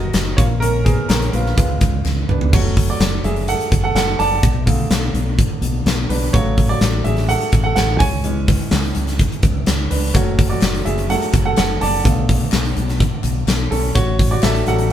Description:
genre	piano-driven pop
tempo	126 BPM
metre	4/4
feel	straight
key	F# minor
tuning	A4 = 440 Hz
part	clear grand piano	accompaniment	0.0-14.9 s	C#3 to A5	-21 LUFS	right 2 dB	none
part	fingered electric bass	bass	0.0-14.9 s	Gb1 to Db2	-20 LUFS	equal	none
part	huge arena drum kit	drums	0.1-14.9 s	crash cymbal, handclaps, hi-hat, kick drum, snare drum, toms	-18 LUFS	equal	none
part	group handclap	percussion	0.1-2.2, 10.6-14.5 s	none	-34 LUFS	left 6 dB	none
room	moderate studio reverb, RT60 0.8 s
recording	band playing live in one room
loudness	-15 LUFS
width	side -11 dB against mid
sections	0.0-2.5 A section; 2.5-14.9 A section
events	grand piano solo 0.0-2.5, 2.5-14.9; drum fill 2.1-2.5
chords	0.4 Bbm; 1.6 Db7; 2.5 F#m; 4.4 Bm7; 6.3 F#m/A; 8.0 C#m; 10.1 F#m; 12.1 Bm7; 14.0 F#m/A

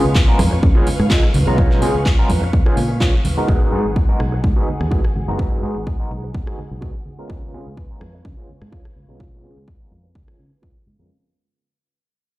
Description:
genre	filtered disco house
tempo	126 BPM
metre	4/4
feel	swing 54% on 16ths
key	unclear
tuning	A4 = 440 Hz
part	barky tine electric piano	accompaniment	0.0-11.1 s	G#3 to A#5	-24 LUFS	equal	phaser, sidechain pumping, low-pass filter
part	string machine, full ensemble	sustained chords	0.0-11.1 s	G#4 to C#6	-31 LUFS	right 1 dB	phaser, ensemble chorus, sidechain pumping, low-pass filter
part	fingered electric bass	bass	0.0-11.1 s	F#1 to C#3	-21 LUFS	equal	sidechain pumping, low-pass filter
part	tube shaker and congas	percussion	0.0-11.1 s	none	-25 LUFS	right 1 dB	sidechain pumping on perc, low-pass filter on perc
part	electronic kick drum	drums	0.2-10.7 s	none	-17 LUFS	equal	none
part	house drum kit	drums	0.2-10.4 s	handclaps, hi-hat, rim click	-26 LUFS	equal	sidechain pumping on hats
part	mellow electric guitar	riff	0.3-10.9 s	E#4 to D#5	-28 LUFS	right 3 dB	sidechain pumping, low-pass filter
room	light reverb, digital ambience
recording	played on a big sound system in a bare room, stone room reverb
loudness	-15 LUFS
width	side -17 dB against mid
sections	0.0-11.1 A section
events	fade-out 0.0-11.1; filter sweep 0.0-11.1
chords	0.0 C#7; 3.5 G#m7; 7.3 C#7

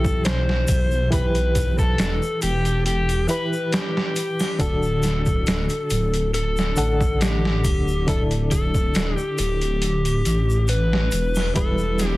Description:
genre	trip hop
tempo	69 BPM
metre	4/4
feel	swing 53% on 16ths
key	unclear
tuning	A4 = 440 Hz
part	overdriven slide guitar	melody	0.0-12.2 s	G4 to C5	-26 LUFS	left 2 dB	tape echo
part	reed electric piano	accompaniment	0.0-12.2 s	D3 to F#5	-27 LUFS	equal	overdrive, tremolo
part	dark detuned saw bass	bass	0.0-12.2 s	D1 to B1	-22 LUFS	equal	none
part	trip hop sampler-style drum kit	drums	0.0-12.2 s	hi-hat, kick drum, snare drum	-24 LUFS	equal	none
part	egg shaker and triangle	percussion	0.0-12.2 s	none	-36 LUFS	left 1 dB	none
room	little or no reverb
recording	dense, heavily limited modern master, vinyl crackle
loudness	-19 LUFS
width	side -18 dB against mid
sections	0.0-12.2 A section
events	none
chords	0.0 Em; 4.6 Dadd11; 8.1 Dsus2; 11.6 Em

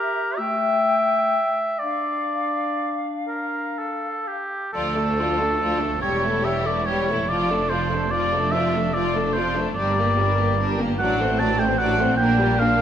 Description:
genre	classical, slow romantic movement for symphony orchestra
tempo	40-51 BPM (dotted quarters)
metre	6/8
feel	rubato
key	D minor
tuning	A4 = 440 Hz
part	small flute group	second line	0.0-4.4 s	E5 to G5	-29 LUFS	left 5 dB	none
part	warm clarinet	second line	0.0-4.4 s	A3 to G4	-30 LUFS	left 2 dB	none
part	warm oboe	second line	0.0-12.8 s	G4 to A5	-23 LUFS	equal	none
part	rich chamber violin section	melody	4.7-12.8 s	G4 to D5	-30 LUFS	left 5 dB	none
part	rich studio cello section	bass	4.7-12.8 s	D2 to Bb2	-28 LUFS	right 3 dB	none
part	warm chamber double bass section	bass	4.7-12.8 s	E1 to D2	-27 LUFS	right 1 dB	none
part	rich chamber violin section	second line	4.8-12.8 s	Bb3 to G4	-29 LUFS	left 3 dB	none
part	rich studio viola section	accompaniment	4.8-12.8 s	F3 to Bb3	-26 LUFS	equal	none
room	moderate scoring stage reverb, RT60 1.8 s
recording	none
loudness	-20 LUFS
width	side -9 dB against mid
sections	0.0-4.8 A section; 4.8-12.8 B section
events	none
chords	0.4 A5; 1.8 Dm; 6.0 A7/E; 7.3 Dm/F; 9.8 Gm; 11.0 D7/A; 12.2 Gm/Bb

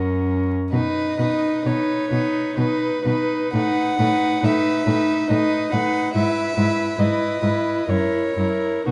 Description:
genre	classical, slow romantic movement for string quartet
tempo	58-72 BPM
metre	3/4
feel	rubato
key	B major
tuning	A4 = 440 Hz
part	warm violin	second line	0.0-8.9 s	A#4 to B4	-29 LUFS	equal	none
part	warm viola	accompaniment	0.0-8.9 s	C#4 to E4	-25 LUFS	equal	none
part	warm cello	bass	0.0-8.9 s	F#2 to B2	-26 LUFS	equal	none
part	warm violin	melody	0.7-8.9 s	B4 to F#5	-27 LUFS	equal	none
room	moderate concert hall reverb, RT60 2.3 s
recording	dark, warm production, vinyl crackle, nothing above 10.8 kHz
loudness	-21 LUFS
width	mono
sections	0.0-8.9 A section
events	none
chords	0.0 F#; 0.7 B; 3.5 B7/A; 6.2 E/G#; 7.9 F#7 (rootless)

